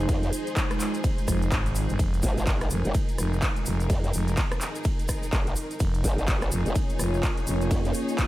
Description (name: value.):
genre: bass house.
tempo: 126 BPM.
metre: 4/4.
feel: swing 60% on 16ths.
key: F minor.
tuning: A4 = 440 Hz.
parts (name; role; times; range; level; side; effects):
sweeping resonant pad; sustained chords; 0.0-8.3 s; Ab3 to Db5; -33 LUFS; right 1 dB; chorus, sidechain pumping.
growling FM bass; bass; 0.0-7.7 s; F1 to Ab1; -26 LUFS; equal; overdrive, sidechain pumping.
tube shaker; percussion; 0.0-8.3 s; none; -40 LUFS; left 2 dB; none.
clear studio string section; texture; 0.0-8.3 s; Eb4 to Db5; -36 LUFS; left 1 dB; sidechain pumping.
growl bass; bass; 0.1-7.9 s; F1 to F2; -28 LUFS; equal; chorus, overdrive, sidechain pumping.
big-room dance drum kit; drums; 0.1-8.3 s; handclaps, hi-hat, ride cymbal, rim click; -33 LUFS; right 1 dB; none.
electronic kick drum; drums; 0.1-8.3 s; none; -26 LUFS; equal; none.
room: light reverb, digital ambience.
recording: none.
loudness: -23 LUFS.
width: side -16 dB against mid.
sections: 0.0-8.3 A section.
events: none.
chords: 0.0 Fm7; 5.8 Bbm/F.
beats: | 0.09 0.56 1.04 1.52 | 1.99 2.47 2.95 3.42 | 3.90 4.37 4.85 5.33 | 5.80 6.28 6.75 7.23 | 7.71 8.18.